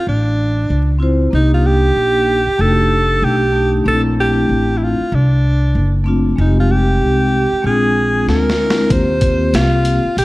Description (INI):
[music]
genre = hip hop, jazz-hop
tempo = 95 BPM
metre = 4/4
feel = swing 61% on 16ths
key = unclear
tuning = A4 = 440 Hz
[part]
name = clear alto saxophone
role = melody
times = 0.0-10.2 s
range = D4 to C5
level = -17 LUFS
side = right 1 dB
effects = slapback echo
[part]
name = upright bass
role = bass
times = 0.1-10.2 s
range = F1 to Eb2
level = -16 LUFS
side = equal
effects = none
[part]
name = vibraphone with medium mallets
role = accompaniment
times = 1.0-10.0 s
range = Ab3 to C5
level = -18 LUFS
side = left 1 dB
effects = none
[part]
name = boom bap sampler-style drum kit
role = drums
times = 8.3-10.2 s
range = hi-hat, kick drum, snare drum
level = -19 LUFS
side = equal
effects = none
[sound]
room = light reverb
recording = dark, warm production, vinyl crackle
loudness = -12 LUFS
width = side -19 dB against mid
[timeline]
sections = 0.0-10.2 A section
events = drum fill 8.3-8.9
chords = 0.0 Dm7; 1.3 Cm7; 2.6 F13; 3.9 Bbmaj9#11; 6.4 Fm9; 7.6 Bb9; 8.9 Eb6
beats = 0.07 0.70 | 1.33 1.96 2.59 3.22 | 3.85 4.49 5.12 5.75 | 6.38 7.01 7.64 8.28 | 8.91 9.54 10.17